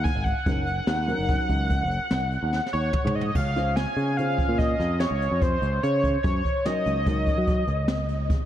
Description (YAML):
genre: progressive instrumental, band music in an uneven meter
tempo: 145 BPM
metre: 7/4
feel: straight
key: unclear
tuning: A4 = 440 Hz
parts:
  - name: octave-doubled lead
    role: melody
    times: 0.0-8.3 s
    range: C5 to Ab5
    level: -27 LUFS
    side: equal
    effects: chorus, ping-pong delay
  - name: picked electric bass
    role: bass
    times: 0.0-8.3 s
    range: Gb1 to Gb3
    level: -26 LUFS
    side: equal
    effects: none
  - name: jazz brush drum kit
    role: drums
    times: 0.1-8.4 s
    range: crash cymbal, hi-hat, kick drum, snare drum, toms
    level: -27 LUFS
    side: equal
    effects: none
  - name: dark baby grand piano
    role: accompaniment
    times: 0.5-7.4 s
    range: Db3 to C5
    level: -33 LUFS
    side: equal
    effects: lush chorus
room: moderate huge ambient reverb, RT60 4.8 s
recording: dreamy mix soaked in reverb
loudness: -22 LUFS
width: side -11 dB against mid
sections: 0.0-3.4 A section; 3.4-8.5 B section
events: drum fill 2.5-3.4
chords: 0.5 Gb6; 3.4 Dbmaj7; 6.2 Gb6